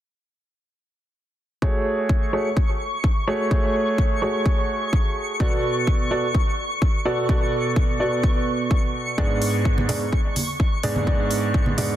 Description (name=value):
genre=progressive house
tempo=127 BPM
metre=4/4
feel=straight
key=F# minor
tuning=A4 = 440 Hz
part: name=warm grand piano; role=stabs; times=1.6-12.0 s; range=G#2 to D5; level=-23 LUFS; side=right 1 dB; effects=sidechain pumping, low-pass filter, dub echo
part: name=electronic kick drum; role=drums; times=1.6-11.6 s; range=none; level=-21 LUFS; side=equal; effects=none
part: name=twinkling granular texture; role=texture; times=1.6-12.0 s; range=C#6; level=-30 LUFS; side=equal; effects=built-in reverb, sidechain pumping
part: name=electronic hi-hat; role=drums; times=9.4-11.9 s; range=none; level=-29 LUFS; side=right 1 dB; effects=sidechain pumping on hats
part: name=congas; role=percussion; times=9.8-11.8 s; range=none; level=-28 LUFS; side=right 1 dB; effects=sidechain pumping on perc
room=light reverb, small room ambience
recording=dense, heavily limited modern master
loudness=-19 LUFS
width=side -12 dB against mid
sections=1.6-12.0 A section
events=none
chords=1.6 F#madd9; 5.4 Bm7; 9.2 G#dim